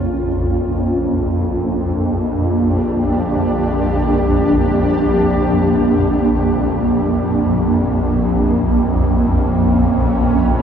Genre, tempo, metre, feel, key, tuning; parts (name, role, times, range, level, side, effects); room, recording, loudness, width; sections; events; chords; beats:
dark ambient drone; free time; A4 = 444 Hz
granular cloud pad; sustained chords; 0.0-10.6 s; Bb3 to D5; -16 LUFS; right 1 dB; built-in reverb
swarming drone; drone; 0.0-10.6 s; Bb1 to F2; -17 LUFS; equal; built-in reverb
wet cathedral reverb, RT60 6.3 s; in a vast, echoing space; -14 LUFS; side -8 dB against mid
0.0-10.6 A section
0.1 Gm; 7.8 Bbm
free time